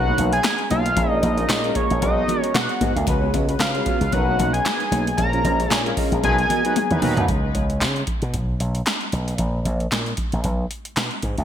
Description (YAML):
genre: early-eighties boogie funk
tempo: 114 BPM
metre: 4/4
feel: swing 56% on 16ths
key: G# dorian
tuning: A4 = 437 Hz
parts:
  - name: fat analog lead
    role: melody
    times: 0.0-7.0 s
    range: C#5 to A#5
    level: -23 LUFS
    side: equal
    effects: chorus, ping-pong delay
  - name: warm grand piano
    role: accompaniment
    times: 0.0-7.1 s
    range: G#3 to C#5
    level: -28 LUFS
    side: left 3 dB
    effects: analog chorus
  - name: slap bass with an envelope filter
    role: bass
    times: 0.0-11.4 s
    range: A#1 to C#3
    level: -23 LUFS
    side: equal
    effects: none
  - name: mellow electric guitar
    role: riff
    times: 0.1-7.3 s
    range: A#3 to E#5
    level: -28 LUFS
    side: right 4 dB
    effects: wide subtle chorus
  - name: electro analog drum machine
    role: drums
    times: 0.2-11.4 s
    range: handclaps, hi-hat, kick drum, snare drum, toms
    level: -24 LUFS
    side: equal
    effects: gated reverb
  - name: congas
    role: percussion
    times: 0.2-7.2 s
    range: none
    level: -32 LUFS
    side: left 9 dB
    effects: none
  - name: analog synth brass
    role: second line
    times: 6.2-7.3 s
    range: F#3 to B4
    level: -29 LUFS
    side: right 1 dB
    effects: chorus, ping-pong delay
room: moderate plate reverb, RT60 2.3 s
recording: bright 1980s-style digital production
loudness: -18 LUFS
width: side -9 dB against mid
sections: 0.0-7.3 A section; 7.3-11.4 B section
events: band accent 5.2-7.3; drum fill 6.8-7.3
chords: 0.0 Bmaj9; 1.0 A#m7; 2.0 G#m9/B; 3.1 C#7sus4; 4.1 Bmaj9; 5.2 A#m7; 6.2 G#m9/B; 7.3 N.C.; 10.4 G#m/B